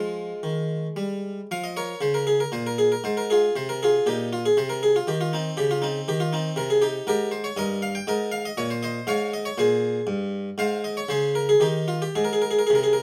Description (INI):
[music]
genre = classical, baroque-style suite movement for harpsichord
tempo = 118 BPM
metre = 3/4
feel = rubato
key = Ab major from 7.6 s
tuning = A4 = 444 Hz
[part]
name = harpsichord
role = solo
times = 0.0-13.0 s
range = G2 to G5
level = -24 LUFS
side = equal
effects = none
[sound]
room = moderate studio reverb, RT60 0.7 s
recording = none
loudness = -24 LUFS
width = mono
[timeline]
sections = 0.0-1.5 A section; 1.5-13.0 B section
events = none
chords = 0.0 Fm; 1.5 Bbm9; 3.0 Fm/Ab; 4.6 Cm; 7.6 Abmaj13/G; 11.1 Db5; 11.6 N.C.; 12.2 Ab